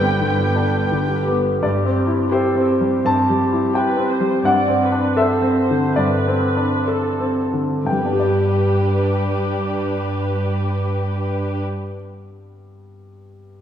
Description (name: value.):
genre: classical.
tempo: 58-90 BPM.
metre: 4/4.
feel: rubato.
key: G major.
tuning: A4 = 440 Hz.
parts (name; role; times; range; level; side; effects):
clear grand piano; melody; 0.0-13.6 s; G2 to A5; -18 LUFS; left 1 dB; none.
muted studio violin section; melody; 0.0-1.3 s; G5; -30 LUFS; left 1 dB; none.
clear oboe; second line; 0.0-1.2 s; G5; -25 LUFS; right 3 dB; none.
muted studio violin section; second line; 0.0-11.6 s; D4 to C5; -28 LUFS; left 1 dB; none.
muted studio viola section; accompaniment; 0.0-11.6 s; G3 to D5; -27 LUFS; equal; none.
dark tuba; bass; 0.0-1.5 s; G1; -28 LUFS; right 3 dB; none.
muted studio double bass section; bass; 0.0-1.5 s; G1; -26 LUFS; right 1 dB; none.
muted symphonic cello section; bass; 0.0-11.6 s; G2 to G3; -24 LUFS; right 1 dB; none.
room: wet recital hall reverb, RT60 1.6 s.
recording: heard from further back in the room.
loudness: -16 LUFS.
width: side -9 dB against mid.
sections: 0.0-1.6 A section; 1.6-7.9 B section; 7.9-11.6 C section.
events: slowing down 0.2-7.9.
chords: 0.0 G; 1.6 C/G; 4.4 D7/G; 7.9 G.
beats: 0.19 0.92 | 1.63 2.32 3.05 3.74 | 4.45 5.17 5.97 6.88 | 7.87 8.81 9.75 10.68.